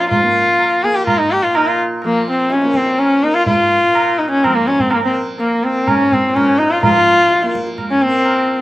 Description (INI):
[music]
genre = indian classical, Hindustani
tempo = 125 BPM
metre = 7/4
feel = straight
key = Bb raga kafi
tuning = A4 = 438 Hz
[part]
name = rich sarangi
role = melody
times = 0.0-8.6 s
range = Bb3 to Ab4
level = -13 LUFS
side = left 1 dB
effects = none
[part]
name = tanpura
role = drone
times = 0.0-8.6 s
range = Bb2 to Bb3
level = -25 LUFS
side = right 2 dB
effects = none
[part]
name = tabla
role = percussion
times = 0.1-8.4 s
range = none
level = -20 LUFS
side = right 3 dB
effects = none
[sound]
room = little or no reverb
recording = recorded outdoors, with no room sound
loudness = -12 LUFS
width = side -16 dB against mid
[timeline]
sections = 0.0-8.6 A section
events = none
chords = none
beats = | 0.11 0.59 1.08 1.56 2.04 2.52 3.00 | 3.48 3.96 4.43 4.91 5.39 5.87 6.34 | 6.82 7.30 7.78 8.25